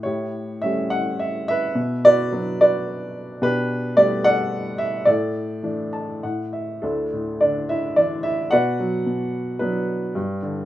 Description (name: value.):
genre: classical, lyrical solo piano.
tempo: 100-112 BPM.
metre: 3/4.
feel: rubato.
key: D major.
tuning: A4 = 439 Hz.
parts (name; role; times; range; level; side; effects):
warm upright piano; solo; 0.0-10.7 s; D2 to A5; -19 LUFS; equal; none.
room: light reverb.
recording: minimal, uncompressed stereo recording.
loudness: -19 LUFS.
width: side -14 dB against mid.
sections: 0.0-6.8 A section; 6.8-10.7 B section.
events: upright piano fill 5.6-6.8.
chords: 0.1 A7; 1.8 Bm; 3.4 Gadd9/B; 5.1 Asus4; 6.2 N.C.; 6.8 Dsus2; 8.5 Bm.